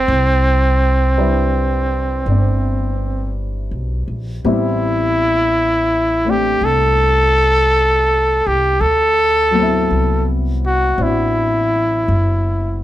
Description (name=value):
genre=jazz ballad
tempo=55 BPM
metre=4/4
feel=swing 69% on 8ths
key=C major, A minor from 4.5 s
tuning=A4 = 440 Hz
part: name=warm trumpet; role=melody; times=0.0-12.8 s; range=C4 to A4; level=-15 LUFS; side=equal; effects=none
part: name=warm upright piano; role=accompaniment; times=0.0-12.8 s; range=F#3 to B4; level=-22 LUFS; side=left 2 dB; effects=none
part: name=upright bass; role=bass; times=0.0-12.8 s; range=F#1 to D2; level=-18 LUFS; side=equal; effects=none
room=light reverb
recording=none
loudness=-14 LUFS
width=side -14 dB against mid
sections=0.0-4.5 A section; 4.5-12.8 B section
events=none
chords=0.0 Cmaj9; 4.5 Am7; 8.8 D13